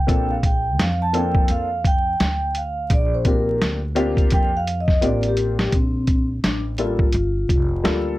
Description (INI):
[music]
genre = hip hop, jazz-hop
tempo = 85 BPM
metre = 4/4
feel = swing 61% on 16ths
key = Bb major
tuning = A4 = 440 Hz
[part]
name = vibraphone with soft mallets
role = melody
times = 0.0-8.2 s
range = C4 to A5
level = -24 LUFS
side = equal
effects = none
[part]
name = upright bass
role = bass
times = 0.0-8.2 s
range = F1 to F2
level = -25 LUFS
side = equal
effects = none
[part]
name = warm upright piano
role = accompaniment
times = 0.1-8.2 s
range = G3 to A4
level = -24 LUFS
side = left 2 dB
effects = none
[part]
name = lo-fi sampler-style drum kit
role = drums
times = 0.1-8.0 s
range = hi-hat, kick drum, snare drum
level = -20 LUFS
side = equal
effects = vintage 12-bit sampler grit
[sound]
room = light reverb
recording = vinyl crackle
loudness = -18 LUFS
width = side -17 dB against mid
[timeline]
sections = 0.0-5.7 A section; 5.7-8.2 B section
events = vibraphone solo 0.0-5.7; drum fill 5.0-5.7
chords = 0.1 Bbmaj9; 5.7 Bbmaj7; 7.1 Gm7